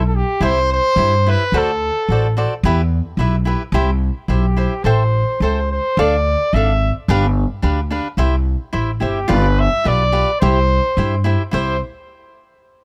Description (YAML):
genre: mexican folk, mariachi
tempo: 108 BPM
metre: 2/4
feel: rubato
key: C major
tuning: A4 = 441 Hz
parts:
  - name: cavaquinho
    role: accompaniment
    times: 0.0-11.8 s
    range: D4 to G5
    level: -23 LUFS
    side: equal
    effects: none
  - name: upright bass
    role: bass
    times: 0.0-11.8 s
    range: G1 to G2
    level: -19 LUFS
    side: equal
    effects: transformer saturation
  - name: clear trumpet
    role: melody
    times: 0.1-7.0, 9.1-11.8 s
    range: G4 to E5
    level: -21 LUFS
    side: equal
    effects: none
room: small room ambience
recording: dry, close 1970s-style studio recording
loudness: -17 LUFS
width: mono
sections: 0.4-9.3 A section; 9.3-11.5 B section; 11.5-12.6 C section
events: none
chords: 0.4 C; 1.5 D7; 2.6 Em; 3.7 C; 4.8 Am7; 6.0 Dm; 7.1 G7; 8.2 C; 9.3 G7; 10.4 C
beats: | 0.41 0.97 | 1.53 2.08 | 2.63 3.18 | 3.72 4.27 | 4.84 5.41 | 5.98 6.54 | 7.09 7.63 | 8.18 8.73 | 9.30 9.87 | 10.42 10.97 | 11.53